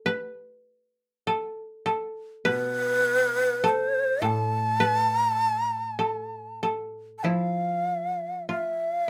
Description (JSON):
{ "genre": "japanese traditional, Japanese chamber music", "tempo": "50 BPM", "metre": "2/4", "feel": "uneven beats, rubato", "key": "A hirajoshi", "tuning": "A4 = 440 Hz", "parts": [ { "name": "koto", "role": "second line", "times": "0.0-9.1 s", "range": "E4 to B4", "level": "-31 LUFS", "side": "equal", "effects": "none" }, { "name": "breathy bright long shakuhachi", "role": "melody", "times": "2.5-9.1 s", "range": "B4 to A5", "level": "-27 LUFS", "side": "equal", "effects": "none" }, { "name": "koto", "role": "accompaniment", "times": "2.5-9.1 s", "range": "A2 to F3", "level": "-34 LUFS", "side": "equal", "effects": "none" } ], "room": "moderate small room reverb, RT60 0.5 s", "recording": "none", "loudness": "-26 LUFS", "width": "mono", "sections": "0.0-7.2 A section; 7.2-9.1 B section", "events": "none", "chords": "none" }